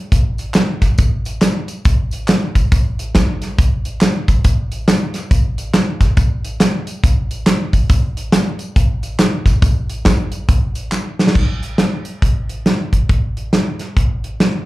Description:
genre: gospel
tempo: 139 BPM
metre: 4/4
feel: swing 62% on 8ths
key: none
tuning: none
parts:
  - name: modern studio drum kit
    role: drums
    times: 0.1-14.5 s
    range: crash cymbal, hi-hat, kick drum, snare drum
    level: -14 LUFS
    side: equal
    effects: none
  - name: tambourine and handclaps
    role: percussion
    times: 0.1-11.3 s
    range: none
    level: -30 LUFS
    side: equal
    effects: none
room: light reverb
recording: live gig heard through the venue's PA, tape saturation, club reverb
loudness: -14 LUFS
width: side -18 dB against mid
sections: 0.0-11.4 A section; 11.4-14.7 B section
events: drum fill 10.9-11.4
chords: none

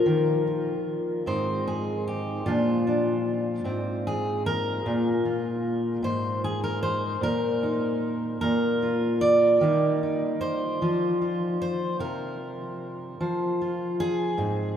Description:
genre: folk, solo fingerstyle acoustic guitar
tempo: 50 BPM (dotted quarters)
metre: 6/8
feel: straight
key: Eb major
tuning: A4 = 440 Hz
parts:
  - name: fingerpicked steel-string acoustic guitar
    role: solo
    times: 0.0-14.8 s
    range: Ab2 to D5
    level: -23 LUFS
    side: equal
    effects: none
room: wet cathedral reverb, RT60 6.1 s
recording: in a vast, echoing space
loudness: -24 LUFS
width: side -9 dB against mid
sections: 0.1-14.8 A section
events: none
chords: 0.1 Ebsus2; 1.3 Ab; 2.5 Bb; 3.7 Ab; 4.9 Bb5; 6.0 N.C.; 7.2 Bbsus4; 8.4 Bb5; 9.6 Eb; 10.8 N.C.; 13.2 F5

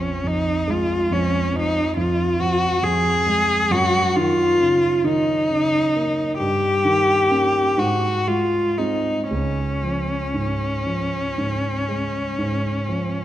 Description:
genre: classical, romantic duo for cello and grand piano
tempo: 38-46 BPM (dotted quarters)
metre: 12/8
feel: rubato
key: Db major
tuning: A4 = 440 Hz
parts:
  - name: warm cello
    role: melody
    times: 0.0-13.2 s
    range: Db4 to Ab4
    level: -20 LUFS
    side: left 1 dB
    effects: none
  - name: dark concert grand piano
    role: accompaniment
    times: 0.0-13.2 s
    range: Bb1 to Db4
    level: -23 LUFS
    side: right 2 dB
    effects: none
room: wet concert hall reverb, RT60 1.9 s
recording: dark, warm production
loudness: -18 LUFS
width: side -12 dB against mid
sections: 0.0-13.2 A section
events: none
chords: 0.0 Bb5; 3.7 Ebm7/Gb; 6.4 Eb7/G; 7.8 Ab; 9.3 Db

